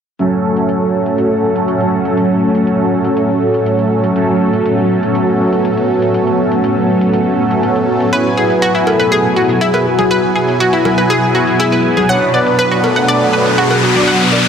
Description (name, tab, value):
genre	progressive house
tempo	121 BPM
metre	4/4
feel	straight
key	F# minor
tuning	A4 = 440 Hz
part	shimmering ambient pad	sustained chords	0.7-14.5 s	A2 to F#4	-17 LUFS	left 1 dB	chorus, built-in reverb
part	soft supersaw	stabs	0.2-14.5 s	F#3 to G#5	-14 LUFS	right 1 dB	phaser, low-pass filter, tape echo
part	electronic hi-hat	drums	0.2-14.5 s	none	-36 LUFS	left 3 dB	none
part	soft octave-layered synth lead	melody	8.1-14.5 s	F#4 to C#5	-17 LUFS	left 1 dB	chorus, phaser, tape echo
part	analog pluck	arpeggios	8.1-14.4 s	E4 to F#5	-15 LUFS	equal	chorus, tape echo
part	cowbell and congas	percussion	8.9-14.4 s	none	-21 LUFS	right 1 dB	overdrive
part	riser	sound effects	12.5-14.5 s	none	-16 LUFS	left 2 dB	none
room	moderate lush hall reverb, RT60 2.1 s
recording	dense, heavily limited modern master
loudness	-11 LUFS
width	side -7 dB against mid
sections	0.2-14.5 A section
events	filter sweep on supersaw synth 0.2-14.5; riser 12.5-14.5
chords	0.2 F#m; 8.1 Eadd9; 12.1 Bm